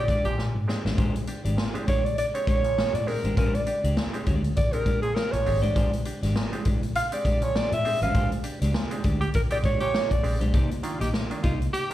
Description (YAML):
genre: funk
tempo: 100 BPM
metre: 4/4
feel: swing 56% on 16ths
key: Bb mixolydian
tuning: A4 = 439 Hz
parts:
  - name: breathy alto saxophone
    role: melody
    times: 0.0-10.4 s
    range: Ab4 to F5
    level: -26 LUFS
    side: right 1 dB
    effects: slapback echo
  - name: breathy tenor saxophone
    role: second line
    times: 0.0-0.4, 9.2-11.9 s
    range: F4 to G4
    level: -32 LUFS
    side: right 1 dB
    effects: slapback echo
  - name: mellow clav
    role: stabs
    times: 0.0-11.9 s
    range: Bb2 to G4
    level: -35 LUFS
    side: right 3 dB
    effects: slapback echo
  - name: fingered electric bass with an envelope filter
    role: bass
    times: 0.0-11.7 s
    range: Ab1 to Bb2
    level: -27 LUFS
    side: equal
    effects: none
  - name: clean electric guitar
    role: accompaniment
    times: 0.1-11.8 s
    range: Ab3 to Eb5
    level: -33 LUFS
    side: left 2 dB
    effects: spring reverb, slapback echo
  - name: swinging big-band drum kit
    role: drums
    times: 0.1-11.9 s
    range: hi-hat, kick drum, snare drum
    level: -28 LUFS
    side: equal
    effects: none
room: light reverb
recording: live gig heard through the venue's PA, club reverb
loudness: -23 LUFS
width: side -14 dB against mid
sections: 0.0-10.5 A section; 10.5-11.9 B section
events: band accent 0.0-1.0, 8.1-10.5; alto saxophone solo 0.0-10.5; drum fill 0.4-1.0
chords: 0.0 Bb13; 10.5 Cm9